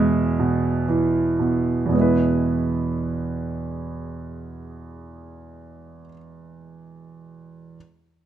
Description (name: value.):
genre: classical, lyrical solo piano.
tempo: 35-45 BPM (dotted quarters).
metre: 6/8.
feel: rubato.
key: E major.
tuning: A4 = 440 Hz.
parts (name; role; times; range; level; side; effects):
clear concert grand piano; solo; 0.0-7.8 s; E2 to E5; -22 LUFS; right 2 dB; none.
room: moderate recital hall reverb, RT60 1.4 s.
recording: close, detailed microphones.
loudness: -20 LUFS.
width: side -10 dB against mid.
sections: 0.0-1.9 A section; 1.9-5.3 B section.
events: slowing down 0.0-1.9.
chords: 0.0 E.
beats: 0.39 | 1.94 3.62.